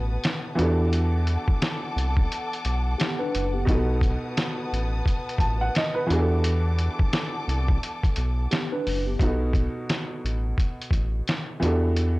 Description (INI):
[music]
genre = lo-fi hip hop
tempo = 87 BPM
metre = 4/4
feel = swing 61% on 16ths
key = E minor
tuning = A4 = 440 Hz
[part]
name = clear upright piano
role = accompaniment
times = 0.0-12.2 s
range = B2 to A5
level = -29 LUFS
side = right 1 dB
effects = cassette tape, low-pass filter
[part]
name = warm studio string section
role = sustained chords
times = 0.0-9.2 s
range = A4 to D#6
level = -34 LUFS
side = left 2 dB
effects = low-pass filter
[part]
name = round analog bass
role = bass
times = 0.0-12.2 s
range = F#1 to E2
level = -24 LUFS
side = equal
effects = transformer saturation
[part]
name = lo-fi sampler-style drum kit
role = drums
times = 0.2-12.2 s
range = hi-hat, kick drum, snare drum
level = -25 LUFS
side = equal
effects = none
[part]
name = mellow tine electric piano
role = second line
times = 3.0-3.9, 8.5-9.4 s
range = B3 to B4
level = -30 LUFS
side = equal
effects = medium stereo tremolo, low-pass filter, tape echo
[sound]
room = little or no reverb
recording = dry, gritty hardware recording, cassette tape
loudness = -22 LUFS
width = side -21 dB against mid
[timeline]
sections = 0.0-9.2 A section; 9.2-12.2 B section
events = none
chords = 0.0 B7; 0.6 Em11; 3.7 B7; 6.1 Em11; 9.2 B7; 11.6 Em11